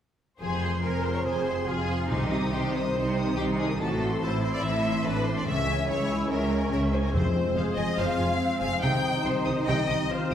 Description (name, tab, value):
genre	cinematic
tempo	142 BPM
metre	4/4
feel	straight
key	F minor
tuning	A4 = 440 Hz
part	rich symphonic violin section	melody	0.4-10.3 s	C5 to Eb6	-37 LUFS	left 1 dB	none
part	rich symphonic violin section	second line	0.4-10.3 s	Eb4 to G5	-30 LUFS	left 2 dB	none
part	warm symphonic viola section	accompaniment	0.4-10.3 s	C4 to C5	-33 LUFS	right 2 dB	none
part	mellow French horn section	sustained chords	0.4-10.3 s	Eb3 to Db4	-32 LUFS	left 1 dB	none
part	concert harp	arpeggios	0.4-10.3 s	A2 to C5	-34 LUFS	left 3 dB	none
part	bright symphonic cello section	bass	0.4-10.3 s	Db2 to C3	-32 LUFS	right 1 dB	none
part	rich symphonic double bass section	bass	0.4-10.3 s	F1 to Db2	-32 LUFS	right 2 dB	none
part	timpani	percussion	2.1-2.7, 7.1-7.7 s	F2 to C3	-32 LUFS	equal	none
room	wet recital hall reverb, RT60 1.4 s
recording	recorded in a church or concert hall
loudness	-24 LUFS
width	side -9 dB against mid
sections	0.4-10.3 A section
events	none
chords	0.4 Fm; 2.1 Cm; 3.8 Am; 5.5 Dbm; 7.1 Fm; 8.8 Cm